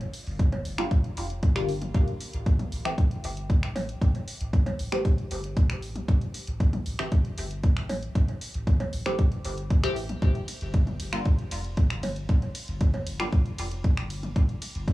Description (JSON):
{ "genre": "dub techno", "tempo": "116 BPM", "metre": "4/4", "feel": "straight", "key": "A phrygian", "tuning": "A4 = 438 Hz", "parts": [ { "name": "punchy analog drum machine", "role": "drums", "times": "0.0-14.9 s", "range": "finger snaps, hi-hat, ride cymbal", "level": "-38 LUFS", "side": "equal", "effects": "dub echo" }, { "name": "soft dub sub bass", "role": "bass", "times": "0.3-14.9 s", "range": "F1 to A1", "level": "-33 LUFS", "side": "equal", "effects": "tube saturation, sidechain pumping" }, { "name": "electronic kick drum", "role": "drums", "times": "0.4-14.9 s", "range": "none", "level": "-22 LUFS", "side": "equal", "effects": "overdrive" }, { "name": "electronic toms and cowbell", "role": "percussion", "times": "0.5-14.3 s", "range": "none", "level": "-37 LUFS", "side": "equal", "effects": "overdrive, sidechain pumping on toms, sidechain pumping on perc, dub echo" }, { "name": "filtered dub chord stab", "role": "stabs", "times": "0.8-13.3 s", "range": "D3 to G4", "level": "-34 LUFS", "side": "left 1 dB", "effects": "phaser, dub echo" } ], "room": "little or no reverb", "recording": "dry, gritty hardware recording, transformer saturation, cassette tape, small room ambience", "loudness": "-24 LUFS", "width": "side -17 dB against mid", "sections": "0.0-14.9 A section", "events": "none", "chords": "0.0 G7(no3); 1.9 A7(no3); 10.2 G7(no3)" }